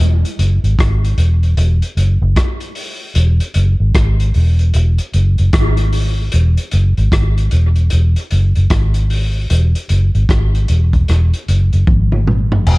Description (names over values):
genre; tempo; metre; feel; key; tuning
dub reggae; 76 BPM; 4/4; swing 62% on 16ths; E major; A4 = 438 Hz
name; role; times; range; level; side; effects
vintage muted fingered electric bass; bass; 0.0-12.8 s; E1 to G#1; -12 LUFS; equal; none
vintage drum kit; drums; 0.2-12.8 s; crash cymbal, hi-hat, kick drum, rim click, toms; -18 LUFS; equal; none
room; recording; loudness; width
little or no reverb; dark, warm production; -11 LUFS; side -22 dB against mid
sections
0.0-12.7 A section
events
drum fill 11.9-12.7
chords
none